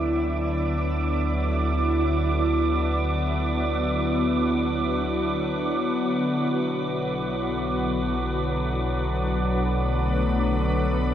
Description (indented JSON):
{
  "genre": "ambient",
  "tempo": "free time",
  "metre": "none",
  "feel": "none",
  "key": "D major",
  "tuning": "A4 = 444 Hz",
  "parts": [
    { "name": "soft additive organ-like pad", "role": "sustained chords", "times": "0.0-11.1 s", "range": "B2 to D5", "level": "-25 LUFS", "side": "equal", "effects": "ensemble chorus, built-in reverb" },
    { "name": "round analog bass", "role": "bass", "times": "0.0-11.1 s", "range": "B1 to D2", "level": "-27 LUFS", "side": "equal", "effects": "none" },
    { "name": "organ-like drone", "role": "drone", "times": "0.0-11.1 s", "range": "D3 to F#3", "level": "-31 LUFS", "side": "left 2 dB", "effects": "ensemble chorus, built-in reverb" },
    { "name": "wind-like tuned noise texture", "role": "texture", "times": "0.0-11.1 s", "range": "D6", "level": "-32 LUFS", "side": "right 4 dB", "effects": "built-in reverb" }
  ],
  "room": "wet huge ambient reverb, RT60 8.7 s",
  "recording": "none",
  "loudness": "-22 LUFS",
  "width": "side -10 dB against mid",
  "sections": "0.0-11.1 A section",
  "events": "none",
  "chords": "0.0 D6; 6.2 Bm7",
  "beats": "free time"
}